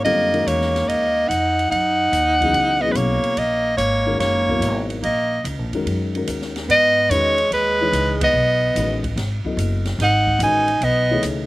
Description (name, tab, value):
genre	modal jazz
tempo	145 BPM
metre	4/4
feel	swing 67% on 8ths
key	Eb phrygian, G# phrygian from 6.7 s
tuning	A4 = 440 Hz
part	breathy soprano saxophone	melody	0.0-11.2 s	Cb5 to G#5	-18 LUFS	equal	none
part	clear tenor saxophone	second line	0.0-11.2 s	G#3 to D#4	-25 LUFS	right 3 dB	slapback echo
part	dark upright piano	accompaniment	0.0-11.5 s	Cb3 to D#5	-26 LUFS	left 4 dB	none
part	upright bass	bass	0.0-11.5 s	Gb1 to G#2	-24 LUFS	equal	none
part	open jazz drum kit	drums	0.1-11.4 s	hi-hat, kick drum, ride cymbal, snare drum	-32 LUFS	right 1 dB	none
room	little or no reverb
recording	recorded outdoors, with no room sound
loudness	-16 LUFS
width	side -18 dB against mid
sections	0.0-6.7 A section; 6.7-11.5 B section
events	band accent 8.1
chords	0.0 Ebm7; 6.7 G#m7